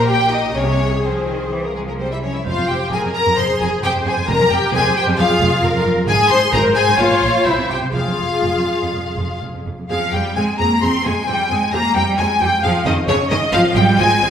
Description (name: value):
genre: quick classical-period movement for string orchestra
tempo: 120-135 BPM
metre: 4/4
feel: rubato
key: F minor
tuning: A4 = 440 Hz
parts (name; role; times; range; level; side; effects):
- rich symphonic violin section; melody; 0.0-14.3 s; Ab4 to C6; -20 LUFS; left 2 dB; none
- warm symphonic violin section; second line; 0.0-14.3 s; Ab3 to C6; -20 LUFS; left 2 dB; none
- warm symphonic viola section; accompaniment; 0.0-14.3 s; C4 to Db5; -23 LUFS; equal; none
- clear symphonic double bass section; bass; 0.0-14.3 s; F1 to F2; -24 LUFS; right 2 dB; none
- rich symphonic cello section; bass; 0.0-14.3 s; F2 to C4; -22 LUFS; right 2 dB; none
room: wet recital hall reverb, RT60 1.5 s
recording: recorded in a church or concert hall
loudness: -14 LUFS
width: side -8 dB against mid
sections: 0.0-9.9 A section; 9.9-14.3 A section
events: none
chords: 0.0 Eb/Bb; 0.6 Fm/C; 1.5 C; 2.5 Fm; 6.1 Abadd9; 7.0 Bbm; 7.5 C; 7.9 Fm; 13.5 Fm/Ab